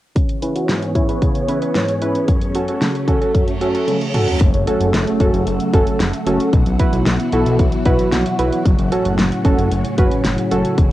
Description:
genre	synth-pop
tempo	113 BPM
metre	4/4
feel	straight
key	F# minor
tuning	A4 = 440 Hz
part	warm analog keys	accompaniment	0.2-10.7 s	F#2 to B5	-20 LUFS	right 1 dB	chorus, low-pass filter, cassette tape
part	soft string machine	sustained chords	0.2-10.9 s	G#2 to C#5	-21 LUFS	equal	phaser, ensemble chorus, low-pass filter, cassette tape
part	pop drum kit	drums	0.2-10.9 s	hi-hat, kick drum, snare drum, toms	-17 LUFS	equal	cassette tape
part	reverse cymbal and impact	sound effects	3.5-6.5 s	none	-29 LUFS	right 1 dB	none
part	fat analog bass	bass	4.4-10.9 s	E1 to B1	-20 LUFS	equal	none
room	moderate studio reverb, RT60 0.5 s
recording	home recording on cassette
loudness	-14 LUFS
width	side -15 dB against mid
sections	0.2-4.4 A section; 4.4-10.9 B section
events	filter sweep 0.2-4.4; reverse cymbal 3.5-4.4; drum fill 3.9-4.4; impact 4.4-6.5; synth keys fill 7.6-8.7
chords	0.2 C#m7; 2.3 F#m; 6.5 Bsus4; 8.7 F#m

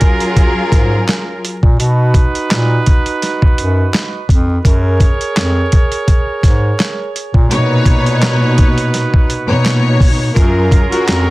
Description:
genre	hip hop, boom-bap hip-hop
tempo	84 BPM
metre	4/4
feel	swing 55% on 16ths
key	F# major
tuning	A4 = 441 Hz
part	warm studio string section	accompaniment	0.0-1.5, 7.5-11.3 s	A#2 to C#5	-14 LUFS	left 1 dB	cassette tape
part	warm horn section	stabs	0.0-11.3 s	C#4 to C#5	-20 LUFS	right 3 dB	digital delay
part	boom bap sampler-style drum kit	drums	0.0-11.3 s	handclaps, hi-hat, kick drum, snare drum	-12 LUFS	equal	none
part	warm bass clarinet	bass	0.7-11.3 s	E#2 to B2	-14 LUFS	equal	none
room	little or no reverb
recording	dense, heavily limited modern master, vinyl crackle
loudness	-10 LUFS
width	side -20 dB against mid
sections	0.0-11.3 A section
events	none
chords	0.0 F#maj9; 1.8 B; 4.6 F#add9; 7.5 Bmaj9; 10.4 F#maj9

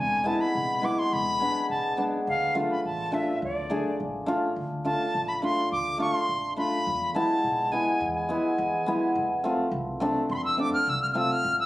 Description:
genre	klezmer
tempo	104 BPM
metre	2/4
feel	straight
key	D dorian sharp4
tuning	A4 = 441 Hz
part	bright reedy silver concert flute	melody	0.0-11.7 s	D5 to F6	-27 LUFS	equal	none
part	upright bass	bass	0.0-11.7 s	E1 to F2	-38 LUFS	right 1 dB	none
part	hammered dulcimer	accompaniment	0.2-11.3 s	G#3 to G#4	-27 LUFS	equal	none
room	moderate studio reverb, RT60 0.5 s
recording	recorded on a phone in the room, club reverb, compression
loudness	-24 LUFS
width	side -16 dB against mid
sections	0.0-4.6 A section; 4.6-11.7 B section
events	flute solo 4.6-11.7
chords	0.0 E; 2.3 Dm; 6.9 E; 9.2 F

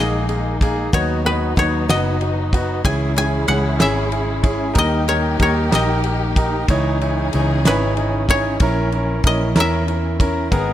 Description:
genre	six-eight pop ballad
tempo	63 BPM (dotted quarters)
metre	6/8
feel	straight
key	unclear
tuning	A4 = 440 Hz
part	koto	melody	0.0-10.7 s	B4 to G#5	-23 LUFS	left 2 dB	none
part	warm concert grand piano	accompaniment	0.0-10.7 s	A#3 to C#5	-22 LUFS	right 2 dB	none
part	warm symphonic string section	sustained chords	0.0-10.7 s	C#3 to G#4	-27 LUFS	left 2 dB	none
part	picked steel-string acoustic guitar	arpeggios	0.0-10.7 s	G#2 to B4	-29 LUFS	left 6 dB	none
part	vintage muted fingered electric bass	bass	0.0-10.7 s	F#1 to E2	-21 LUFS	equal	none
part	damped 70s drum kit	drums	0.3-10.7 s	kick drum, ride cymbal, snare drum	-20 LUFS	equal	none
room	light reverb, small room reverb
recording	none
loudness	-16 LUFS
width	side -12 dB against mid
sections	0.0-10.7 A section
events	none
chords	0.0 D#sus4; 0.9 B/D#; 2.9 C#m; 4.8 D#; 6.7 C#madd9; 8.6 A#dim

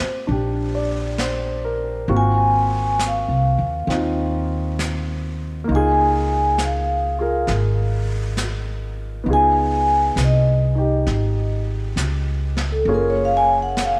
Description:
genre	jazz ballad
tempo	67 BPM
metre	4/4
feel	swing 68% on 8ths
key	unclear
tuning	A4 = 440 Hz
part	vibraphone with soft mallets	melody	0.0-14.0 s	A4 to Ab5	-22 LUFS	equal	none
part	clear concert grand piano	accompaniment	0.0-14.0 s	Bb3 to D5	-27 LUFS	equal	none
part	upright bass	bass	0.0-14.0 s	Gb1 to Eb2	-24 LUFS	equal	none
part	vintage brush drum kit	drums	0.3-14.0 s	brushed snare drum, hi-hat, snare drum	-33 LUFS	equal	none
room	moderate echo chamber reverb, RT60 2.3 s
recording	none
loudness	-20 LUFS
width	mono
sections	0.0-14.0 A section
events	vibraphone solo 0.0-14.0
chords	0.0 Eb69 (rootless); 2.1 Ab13; 5.7 Db69; 9.3 Db9; 12.9 Gbmaj7

